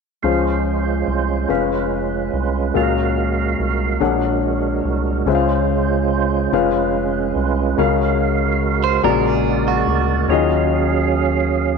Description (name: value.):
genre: gospel.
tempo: 48 BPM (dotted quarters).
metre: 6/8.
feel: straight.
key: Db major.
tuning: A4 = 437 Hz.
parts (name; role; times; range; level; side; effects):
warm baby grand piano; accompaniment; 0.2-11.8 s; Bb2 to F#5; -20 LUFS; left 12 dB; none.
percussive tonewheel organ; sustained chords; 0.2-11.8 s; Gb3 to F5; -20 LUFS; right 11 dB; slow rotary speaker, overdrive, chorus vibrato.
rubbery square bass; bass; 0.2-11.8 s; F1 to Eb2; -23 LUFS; equal; none.
clean electric guitar; second line; 8.8-10.3 s; F#4 to C5; -22 LUFS; right 11 dB; spring reverb.
room: moderate plate reverb, RT60 3.1 s.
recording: 1960s-style stereo with parts hard left and right.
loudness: -16 LUFS.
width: side -5 dB against mid.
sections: 0.2-5.3 A section; 5.3-11.8 B section.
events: none.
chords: 0.2 Dbmaj7; 1.5 Db7/F; 2.8 Gbmaj9/Db; 4.0 Bb7alt; 5.3 Dbmaj7; 6.5 Db7/F; 7.8 Gbmaj9/Db; 9.0 Bb7alt; 10.3 Ebm11.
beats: | 0.24 1.50 | 2.76 4.01 | 5.27 6.53 | 7.79 9.04 | 10.30 11.56.